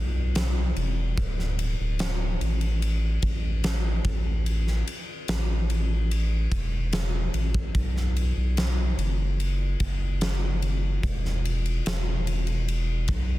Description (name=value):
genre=pop ballad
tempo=73 BPM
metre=4/4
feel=straight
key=unclear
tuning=A4 = 441 Hz
part: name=saturated sub bass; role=bass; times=0.0-13.4 s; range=D1 to B1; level=-25 LUFS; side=equal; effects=none
part: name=huge arena drum kit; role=drums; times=0.4-13.3 s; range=kick drum, ride cymbal, snare drum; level=-29 LUFS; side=equal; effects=none
room=little or no reverb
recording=dense, heavily limited modern master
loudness=-24 LUFS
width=side -16 dB against mid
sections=0.0-13.4 A section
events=none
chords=none